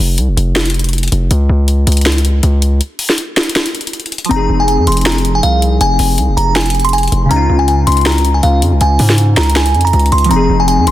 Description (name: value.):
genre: hip hop, trap.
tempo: 160 BPM.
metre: 4/4.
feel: half-time.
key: F minor.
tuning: A4 = 440 Hz.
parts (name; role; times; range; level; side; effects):
distorted 808-style bass; bass; 0.0-10.9 s; F1 to Ab2; -12 LUFS; equal; distortion.
trap drum kit; drums; 0.2-10.9 s; finger snaps, hi-hat, snare drum; -16 LUFS; equal; none.
delicate synth tine bell; melody; 4.3-10.9 s; F5 to C6; -15 LUFS; equal; chorus, phaser, tape echo.
glassy digital keys; accompaniment; 4.3-10.9 s; Db3 to Ab4; -17 LUFS; equal; chorus.
room: light reverb, digital ambience.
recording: dense, heavily limited modern master.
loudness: -10 LUFS.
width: side -14 dB against mid.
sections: 0.0-10.9 A section.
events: break 0.0-4.3.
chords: 0.0 F5; 1.3 N.C.; 4.3 Fm7; 7.3 Dbadd9; 10.3 Fm7.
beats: 0.18 0.56 0.93 | 1.31 1.68 2.06 2.43 | 2.81 3.18 3.56 3.93 | 4.31 4.68 5.06 5.43 | 5.81 6.18 6.56 6.93 | 7.31 7.68 8.06 8.43 | 8.81 9.18 9.56 9.93 | 10.31 10.68.